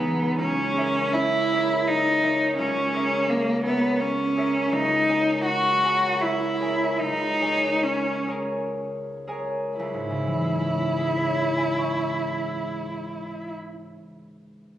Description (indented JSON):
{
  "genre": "classical, impressionist duo for cello and harp",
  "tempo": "55-85 BPM",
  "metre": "3/4",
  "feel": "rubato",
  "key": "C# dorian",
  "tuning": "A4 = 441 Hz",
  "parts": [
    { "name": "rich cello", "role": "melody", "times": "0.0-13.5 s", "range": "A#3 to F#4", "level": "-23 LUFS", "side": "equal", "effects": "none" },
    { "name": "concert harp", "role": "accompaniment", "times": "0.0-14.2 s", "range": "C#2 to G#6", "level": "-28 LUFS", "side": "equal", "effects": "none" }
  ],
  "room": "moderate concert hall reverb, RT60 1.9 s",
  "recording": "recorded on a phone in the room, club reverb",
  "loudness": "-21 LUFS",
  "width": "side -12 dB against mid",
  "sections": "0.4-9.8 A section; 9.8-12.8 B section",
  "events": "slowing down 3.6-9.8",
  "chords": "0.4 C#m6; 9.8 C#m",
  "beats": "| 0.38 1.13 1.86 | 2.58 3.29 4.00 | 4.72 5.45 6.21 | 7.00 7.82 8.75 | 9.79 10.78 11.77"
}